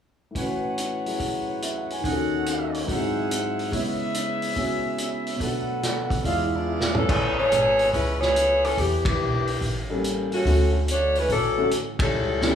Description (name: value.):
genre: jazz, big band swing.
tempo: 143 BPM.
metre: 4/4.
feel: swing 66% on 8ths.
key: A major.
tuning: A4 = 439 Hz.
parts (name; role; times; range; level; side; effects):
warm concert grand piano; accompaniment; 0.3-7.2, 9.9-12.6 s; D#2 to G#5; -27 LUFS; equal; none.
clear trumpet section; stabs; 0.4-7.2 s; G#4 to B5; -30 LUFS; equal; none.
vintage drum kit; drums; 0.4-12.5 s; crash cymbal, hi-hat, kick drum, ride cymbal, snare drum, toms; -28 LUFS; equal; none.
mellow saxophone section; melody; 6.4-12.6 s; D3 to C#5; -22 LUFS; left 1 dB; none.
upright bass; bass; 7.1-12.6 s; G#1 to E2; -27 LUFS; equal; none.
room: wet large studio reverb, RT60 1.1 s.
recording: band playing live in one room, small room ambience.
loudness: -22 LUFS.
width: side -8 dB against mid.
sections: 0.4-7.1 A section; 7.1-12.6 B section.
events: drum fill 6.7-7.1; band accent 9.0, 11.9.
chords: 0.4 A69; 2.0 D#m7b5; 2.9 G#7b13; 3.7 C#m7; 5.4 Bm7; 6.2 E7b9; 7.1 Amaj9; 8.8 Em7; 9.6 A7b9; 10.5 Dmaj7.